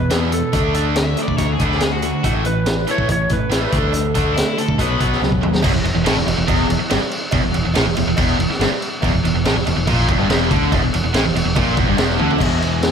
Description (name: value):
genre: classic rock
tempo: 142 BPM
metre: 4/4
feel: straight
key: unclear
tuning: A4 = 440 Hz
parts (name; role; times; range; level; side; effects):
- clean lap steel guitar; melody; 0.0-5.4 s; A4 to C#5; -24 LUFS; equal; slapback echo
- cranked stack guitar; riff; 0.0-12.9 s; E2 to D4; -24 LUFS; left 10 dB; overdrive
- tight distorted guitar; riff; 0.0-12.4 s; E2 to D4; -22 LUFS; right 10 dB; distortion, slapback echo
- fingered electric bass; bass; 0.0-12.9 s; E1 to E2; -22 LUFS; equal; none
- raw garage drum kit; drums; 0.1-12.9 s; crash cymbal, hi-hat, kick drum, snare drum, toms; -20 LUFS; equal; none
- cowbell; percussion; 0.1-12.7 s; none; -34 LUFS; right 7 dB; none
- cranked stack guitar; second line; 1.0-5.2 s; E4 to E5; -27 LUFS; left 4 dB; overdrive, slapback echo
- overdriven electric guitar; riff; 5.6-12.9 s; E2 to G#4; -24 LUFS; equal; slapback echo
room: moderate lush hall reverb, RT60 1.9 s, small room ambience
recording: big arena sound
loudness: -15 LUFS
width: side -7 dB against mid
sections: 0.0-5.6 A section; 5.6-12.4 B section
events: drum fill 5.2-5.6, 12.2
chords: 0.0 E5; 0.5 D5; 2.2 A5; 3.7 D5; 4.8 B7; 5.6 Em7b5; 12.4 E